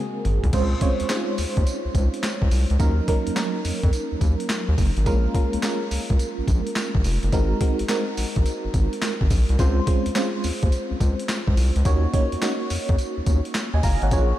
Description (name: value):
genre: R&B, new jack swing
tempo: 106 BPM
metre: 4/4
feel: swing 66% on 16ths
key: Db major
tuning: A4 = 439 Hz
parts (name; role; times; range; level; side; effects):
- FM electric piano with tremolo; accompaniment; 0.0-14.4 s; Gb3 to Bb5; -26 LUFS; right 2 dB; phaser
- boom bap sampler-style drum kit; drums; 0.2-14.3 s; crash cymbal, handclaps, hi-hat, kick drum, snare drum, tambourine, toms; -24 LUFS; equal; overdrive
- round analog bass; bass; 0.3-14.3 s; F1 to F2; -22 LUFS; equal; none
room: light reverb, digital ambience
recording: none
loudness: -20 LUFS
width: side -14 dB against mid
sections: 0.5-14.4 A section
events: drum fill 0.0-0.5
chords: 0.0 Ab9; 0.5 Dbmaj7; 2.8 Ebm7; 5.1 Bbm7; 7.3 Ab9; 9.6 Dbmaj7; 11.9 Ebm7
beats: | 0.53 1.10 1.66 2.23 | 2.80 3.36 3.93 4.49 | 5.06 5.63 6.19 6.76 | 7.32 7.89 8.46 9.02 | 9.59 10.15 10.72 11.29 | 11.85 12.42 12.98 13.55 | 14.12